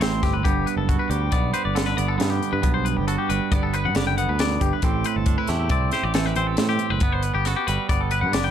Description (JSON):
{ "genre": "math rock and midwest emo", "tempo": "137 BPM", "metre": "5/4", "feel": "straight", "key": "G major", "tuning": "A4 = 438 Hz", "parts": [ { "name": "twangy electric guitar", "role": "accompaniment", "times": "0.0-8.5 s", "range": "G2 to B4", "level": "-26 LUFS", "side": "right 11 dB", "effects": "none" }, { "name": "twangy electric guitar", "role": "arpeggios", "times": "0.0-8.5 s", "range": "G4 to G5", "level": "-26 LUFS", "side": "left 10 dB", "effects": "none" }, { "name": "picked electric bass", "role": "bass", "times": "0.0-8.5 s", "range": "F#1 to A2", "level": "-25 LUFS", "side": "left 1 dB", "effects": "none" }, { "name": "crisp fusion drum kit", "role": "drums", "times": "0.0-8.4 s", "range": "hi-hat, kick drum, snare drum", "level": "-25 LUFS", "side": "left 1 dB", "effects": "none" } ], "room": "light reverb", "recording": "dark, warm production", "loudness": "-20 LUFS", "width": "side -9 dB against mid", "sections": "0.0-8.5 A section", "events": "none", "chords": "0.4 Gmaj7; 4.8 Am7; 7.0 Gmaj7", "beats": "0.01 | 0.45 0.89 1.32 1.76 2.20 | 2.64 3.08 3.52 3.96 4.39 | 4.83 5.27 5.71 6.14 6.58 | 7.02 7.46 7.89 8.33" }